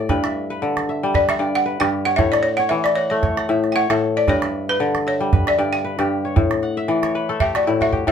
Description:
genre	west african traditional, West African string and xylophone music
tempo	115 BPM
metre	4/4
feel	swing 56% on 16ths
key	G lydian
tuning	A4 = 440 Hz
part	balafon	melody	0.0-8.1 s	A4 to G5	-20 LUFS	equal	none
part	kora	arpeggios	0.0-8.1 s	G2 to F#5	-20 LUFS	left 2 dB	none
part	calabash	percussion	0.1-8.1 s	none	-21 LUFS	right 3 dB	none
room	wet studio ambience, RT60 0.5 s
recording	band playing live in one room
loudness	-17 LUFS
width	side -8 dB against mid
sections	0.0-8.1 A section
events	balafon solo 0.0-8.1; kora fill 6.6-8.1; drum fill 7.8-8.1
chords	0.1 G; 2.2 A; 4.3 G; 6.4 A

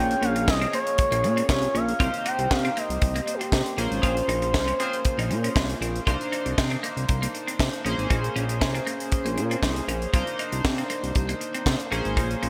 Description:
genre	early-eighties boogie funk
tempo	118 BPM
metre	4/4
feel	straight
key	C phrygian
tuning	A4 = 437 Hz
part	expressive synth lead	melody	0.0-5.5 s	F#4 to G5	-29 LUFS	equal	chorus, delay
part	chorused polysynth	accompaniment	0.0-12.5 s	Bb3 to Db5	-33 LUFS	equal	none
part	clean electric guitar	riff	0.0-12.5 s	Bb3 to F4	-36 LUFS	equal	analog chorus
part	fat analog bass	bass	0.0-12.5 s	Ab1 to C3	-30 LUFS	equal	none
part	tight funk drum kit	drums	0.1-12.5 s	hi-hat, kick drum, snare drum	-29 LUFS	equal	none
part	clear horn section	second line	4.0-5.0 s	C4 to C5	-37 LUFS	equal	delay
room	moderate plate reverb, RT60 2.6 s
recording	bright 1980s-style digital production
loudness	-25 LUFS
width	mono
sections	0.0-6.1 A section; 6.1-12.5 B section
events	band accent 4.0-6.1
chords	0.0 Bbm9; 2.0 Cm7; 3.8 Bbm9; 6.1 Cm9; 7.8 Bbm9; 10.1 Cm9; 11.9 Bbm9

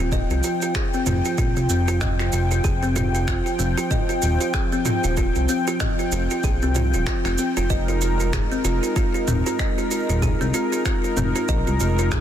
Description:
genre	organic downtempo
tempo	95 BPM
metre	4/4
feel	swing 58% on 16ths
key	F minor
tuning	A4 = 440 Hz
part	warm analog pad	sustained chords	0.0-12.2 s	F3 to G5	-27 LUFS	left 2 dB	chorus, sidechain pumping
part	kalimba	arpeggios	0.0-12.2 s	C4 to Eb5	-24 LUFS	right 1 dB	ping-pong delay
part	smooth synth bass	bass	0.0-12.2 s	Eb1 to C2	-23 LUFS	equal	sidechain pumping
part	deep house drum kit	drums	0.1-12.2 s	cabasa, finger snaps, toms	-29 LUFS	right 1 dB	soft clipping on snare
part	electronic kick drum	drums	0.1-12.2 s	none	-25 LUFS	equal	none
room	light reverb, digital ambience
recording	dense, heavily limited modern master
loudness	-19 LUFS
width	side -10 dB against mid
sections	0.0-12.2 A section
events	none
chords	0.0 F7(no3); 7.7 Abadd9

